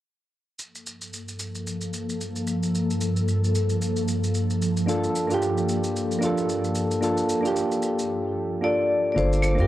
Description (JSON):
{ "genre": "sunset chillout", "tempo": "112 BPM", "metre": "4/4", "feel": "swing 58% on 16ths", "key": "G minor", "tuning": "A4 = 440 Hz", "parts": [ { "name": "ethereal airy pad", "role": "sustained chords", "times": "1.2-9.7 s", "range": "G2 to A5", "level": "-26 LUFS", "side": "equal", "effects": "ensemble chorus, built-in reverb, phaser" }, { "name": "shaker and claves", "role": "drums", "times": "0.6-9.7 s", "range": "none", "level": "-35 LUFS", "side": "right 1 dB", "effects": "none" }, { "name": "soft electric-piano-like synth keys", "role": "accompaniment", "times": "4.9-9.7 s", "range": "Bb3 to A4", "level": "-24 LUFS", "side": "right 1 dB", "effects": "chorus, auto-pan, tape echo" }, { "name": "vibraphone with medium hard mallets", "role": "melody", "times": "8.6-9.7 s", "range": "Bb4 to D5", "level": "-23 LUFS", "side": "left 2 dB", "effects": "none" }, { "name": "round analog bass", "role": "bass", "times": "9.2-9.7 s", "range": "G1 to G2", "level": "-22 LUFS", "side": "equal", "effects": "transformer saturation" }, { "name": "electronic kick drum", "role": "drums", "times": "9.2-9.7 s", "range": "none", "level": "-28 LUFS", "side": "equal", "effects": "none" }, { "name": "drifting glass-harmonics texture", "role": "texture", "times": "9.2-9.7 s", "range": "D6", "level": "-40 LUFS", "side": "right 2 dB", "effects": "chorus, built-in reverb" } ], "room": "moderate spring reverb, RT60 2.0 s", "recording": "home recording on cassette", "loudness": "-22 LUFS", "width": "side -14 dB against mid", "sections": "0.6-9.2 A section", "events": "none", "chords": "0.6 Gm9", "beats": "| 0.59 1.13 1.67 2.20 | 2.74 3.27 3.81 4.34 | 4.88 5.42 5.95 6.49 | 7.02 7.56 8.09 8.63 | 9.16" }